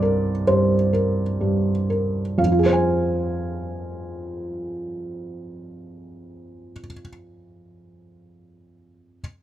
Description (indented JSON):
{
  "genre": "classical",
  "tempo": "62 BPM",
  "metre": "4/4",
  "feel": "rubato",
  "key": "F minor",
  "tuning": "A4 = 437 Hz",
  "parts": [
    { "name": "felt-muted upright piano", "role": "accompaniment", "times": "0.0-9.2 s", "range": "C2 to Ab5", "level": "-21 LUFS", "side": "right 1 dB", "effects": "none" }
  ],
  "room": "little or no reverb",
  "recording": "close, detailed microphones",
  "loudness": "-20 LUFS",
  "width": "side -12 dB against mid",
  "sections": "0.0-2.4 A section; 2.4-6.2 B section",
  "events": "slowing down 0.0-2.4",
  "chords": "0.0 C5; 2.4 Fm"
}